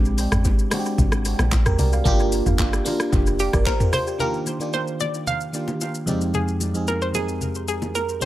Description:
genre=amapiano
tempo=112 BPM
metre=4/4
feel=straight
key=Eb major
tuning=A4 = 439 Hz
part: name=FM electric piano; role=accompaniment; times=0.0-8.3 s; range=F2 to F5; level=-24 LUFS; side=right 1 dB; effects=chorus, phaser, dub echo
part: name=deep log drum bass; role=bass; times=0.0-3.6 s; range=F1 to C2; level=-22 LUFS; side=equal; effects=none
part: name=deep house drum kit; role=drums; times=0.1-8.3 s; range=handclaps, hi-hat, kick drum, rim click, shaker, toms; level=-23 LUFS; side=equal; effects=dub echo
part: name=bongos and congas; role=percussion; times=0.5-8.3 s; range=none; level=-31 LUFS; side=left 1 dB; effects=none
part: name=hollow square pluck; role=melody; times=3.4-8.3 s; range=G4 to F5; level=-26 LUFS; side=right 1 dB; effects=chorus, dub echo
room=light reverb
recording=echo-heavy mix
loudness=-19 LUFS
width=side -14 dB against mid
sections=0.0-4.2 A section; 4.2-8.3 B section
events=drop 0.0-4.2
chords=0.0 Bb13; 2.1 Gm7; 4.2 Ebmaj9; 6.1 Fm9

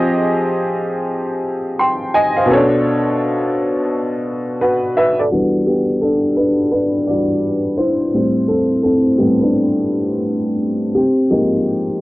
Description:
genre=hip hop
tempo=85 BPM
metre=4/4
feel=swing 63% on 16ths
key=E minor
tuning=A4 = 440 Hz
part: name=warm upright piano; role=solo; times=0.0-12.0 s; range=A2 to C6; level=-14 LUFS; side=equal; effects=low-pass filter
room=moderate studio reverb, RT60 0.7 s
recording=dry, gritty hardware recording, cassette tape, low-pass filter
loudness=-14 LUFS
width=side -18 dB against mid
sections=0.0-5.3 A section; 5.3-12.0 B section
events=upright piano solo 5.3-12.0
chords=0.0 Fm9; 2.5 Bm9; 5.3 Em9; 8.1 Am9; 11.0 Fm9

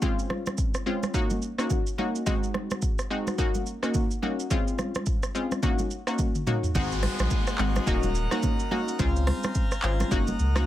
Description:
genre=afrobeats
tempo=107 BPM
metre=4/4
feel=swing 58% on 16ths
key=Ab mixolydian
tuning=A4 = 435 Hz
part: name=analog pluck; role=accompaniment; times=0.0-10.7 s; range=Ab3 to Gb4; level=-29 LUFS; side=left 1 dB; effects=chorus
part: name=afro-pop drum kit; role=drums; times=0.0-10.7 s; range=handclaps, hi-hat, kick drum, rim click, shaker, toms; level=-28 LUFS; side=equal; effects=none
part: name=congas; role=percussion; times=0.0-10.7 s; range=none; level=-35 LUFS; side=right 2 dB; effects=none
part: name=pipe organ, plenum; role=sustained chords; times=6.8-10.7 s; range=Ab4 to C6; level=-34 LUFS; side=equal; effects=none
part: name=warm sub bass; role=bass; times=6.8-10.7 s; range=Eb1 to Db2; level=-26 LUFS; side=equal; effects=none
part: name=downlifter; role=sound effects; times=6.8-10.7 s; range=none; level=-38 LUFS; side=left 1 dB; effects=none
room=light reverb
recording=none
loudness=-24 LUFS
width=side -13 dB against mid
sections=0.0-6.8 A section; 6.8-10.7 B section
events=drum fill 6.2-6.8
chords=0.0 Dbmaj7; 1.1 Gb6; 2.3 Ab7; 3.4 Ebm7; 4.5 Dbmaj7; 5.6 Gb6; 6.8 Ab7; 7.9 Ebm7; 9.0 Dbmaj7; 10.1 Gb6

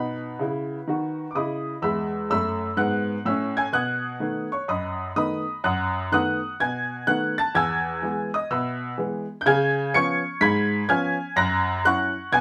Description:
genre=jazz, stride piano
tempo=126 BPM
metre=4/4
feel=swing 66% on 8ths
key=E major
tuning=A4 = 440 Hz
part: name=clear upright piano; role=solo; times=0.0-12.4 s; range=E2 to C#7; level=-24 LUFS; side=equal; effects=none
room=moderate studio reverb, RT60 0.6 s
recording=none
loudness=-24 LUFS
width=mono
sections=0.0-1.8 A section; 1.8-12.4 A section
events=none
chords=0.0 B; 1.8 E; 3.7 B7; 5.6 B7/F#; 7.6 E; 9.5 C#7; 11.4 F#7

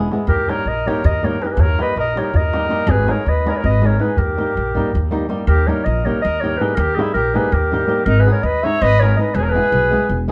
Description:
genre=balkan folk, Balkan wedding band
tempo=324 BPM (eighths)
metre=7/8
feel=straight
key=Eb phrygian dominant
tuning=A4 = 440 Hz
part: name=flamenco guitar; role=accompaniment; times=0.0-10.3 s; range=G3 to G#4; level=-25 LUFS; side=equal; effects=none
part: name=upright bass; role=bass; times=0.0-10.3 s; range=E1 to Eb2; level=-21 LUFS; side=equal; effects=none
part: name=darbuka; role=percussion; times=0.1-5.5 s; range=none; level=-25 LUFS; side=equal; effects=none
part: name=mellow clarinet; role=melody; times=0.3-10.2 s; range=Ab4 to Fb5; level=-22 LUFS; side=equal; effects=none
part: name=mellow trumpet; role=second line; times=0.3-10.2 s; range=Eb4 to Db5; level=-26 LUFS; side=equal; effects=none
room=wet studio reverb, RT60 0.5 s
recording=band playing live in one room, nothing above 10.8 kHz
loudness=-17 LUFS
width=mono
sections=0.0-5.5 A section; 5.5-10.3 A section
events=drum fill 4.6-5.5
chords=0.3 Eb; 2.9 Abm; 4.2 Eb; 8.1 Abm; 9.3 E

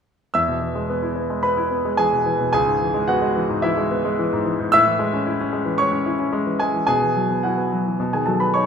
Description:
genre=classical, virtuoso piano study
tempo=109 BPM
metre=4/4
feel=rubato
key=E major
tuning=A4 = 442 Hz
part: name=clear concert grand piano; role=solo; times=0.3-8.7 s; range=C#2 to E6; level=-18 LUFS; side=equal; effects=none
room=moderate recital hall reverb, RT60 1.3 s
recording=minimal, uncompressed stereo recording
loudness=-18 LUFS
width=side -7 dB against mid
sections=0.3-8.7 A section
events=none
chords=0.3 E; 2.5 C#m7; 4.7 Amaj7; 6.9 Bsus4; 8.0 B

